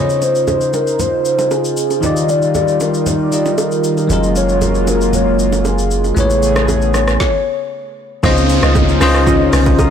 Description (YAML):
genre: amapiano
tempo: 116 BPM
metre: 4/4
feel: straight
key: Db major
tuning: A4 = 439 Hz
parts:
  - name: warm velvety synth lead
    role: melody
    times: 0.0-7.9 s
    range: Ab4 to Eb5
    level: -17 LUFS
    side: equal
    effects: chorus, phaser, ping-pong delay
  - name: bell-like tine electric piano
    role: accompaniment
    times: 0.0-9.9 s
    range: Db3 to Eb6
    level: -18 LUFS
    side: left 5 dB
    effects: none
  - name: warm analog pad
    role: sustained chords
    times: 0.0-9.9 s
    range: Db3 to C5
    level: -20 LUFS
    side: right 1 dB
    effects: chorus, sidechain pumping
  - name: deep house drum kit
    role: drums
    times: 0.1-9.9 s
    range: hi-hat, kick drum, rim click, shaker, snare drum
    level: -21 LUFS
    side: equal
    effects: soft clipping on snare
  - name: bongos and congas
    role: percussion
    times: 0.2-9.9 s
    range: none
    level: -23 LUFS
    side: right 4 dB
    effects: none
  - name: punchy sub bass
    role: bass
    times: 4.1-7.2 s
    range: Gb1 to A1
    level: -18 LUFS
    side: right 1 dB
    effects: transformer saturation
  - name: deep mellow chord stab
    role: stabs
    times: 8.2-9.8 s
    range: F4 to Eb5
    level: -21 LUFS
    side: right 3 dB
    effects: chorus, ping-pong delay
  - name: deep log drum bass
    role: bass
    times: 8.2-9.9 s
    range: C2 to Db2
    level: -15 LUFS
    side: right 1 dB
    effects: transformer saturation
  - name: downlifter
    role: sound effects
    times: 8.2-9.9 s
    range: none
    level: -21 LUFS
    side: right 2 dB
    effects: none
room: light reverb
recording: blown-out, overdriven recording, overdrive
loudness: -12 LUFS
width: side -8 dB against mid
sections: 0.0-8.2 A section; 8.2-9.9 B section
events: stop 7.2-8.2; drop 8.2-9.9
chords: 0.0 Dbmaj9; 2.0 Ebmaj9; 4.1 Gbmaj9; 6.2 Amaj9; 8.2 Dbmaj9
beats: 0.48 1.00 1.51 | 2.03 2.55 3.06 3.58 | 4.10 4.62 5.13 5.65 | 6.17 6.68 7.20 7.72 | 8.24 8.75 9.27 9.79